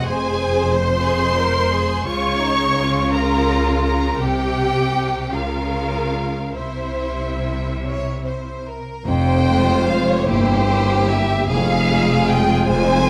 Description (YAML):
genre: classical, slow romantic movement for string orchestra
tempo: 46-60 BPM (dotted quarters)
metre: 6/8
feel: rubato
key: F minor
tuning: A4 = 440 Hz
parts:
  - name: rich studio violin section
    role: melody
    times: 0.0-13.1 s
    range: C5 to Db6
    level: -26 LUFS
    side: equal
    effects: none
  - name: rich studio violin section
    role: second line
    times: 0.0-13.1 s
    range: Eb4 to Db5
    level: -26 LUFS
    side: equal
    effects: none
  - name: rich studio viola section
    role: accompaniment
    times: 0.0-13.1 s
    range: Ab3 to Db5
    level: -27 LUFS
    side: equal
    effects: none
  - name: rich studio cello section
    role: bass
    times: 0.0-13.1 s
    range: F2 to Db3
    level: -25 LUFS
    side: equal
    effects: none
  - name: rich studio double bass section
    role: bass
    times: 0.0-13.1 s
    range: F1 to Db2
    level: -25 LUFS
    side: equal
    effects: none
room: moderate recital hall reverb, RT60 1.5 s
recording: none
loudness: -19 LUFS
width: mono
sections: 0.0-9.1 A section; 9.1-13.1 B section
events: none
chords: 0.0 Fm; 2.1 Bbm/Db; 4.2 C5; 5.3 Bbm/Db; 6.6 C; 9.1 Fm; 10.3 C7/G; 11.5 Fm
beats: | 0.05 1.06 | 2.07 3.12 | 4.21 5.34 | 6.55 7.83 | 9.07 10.27 | 11.48 12.67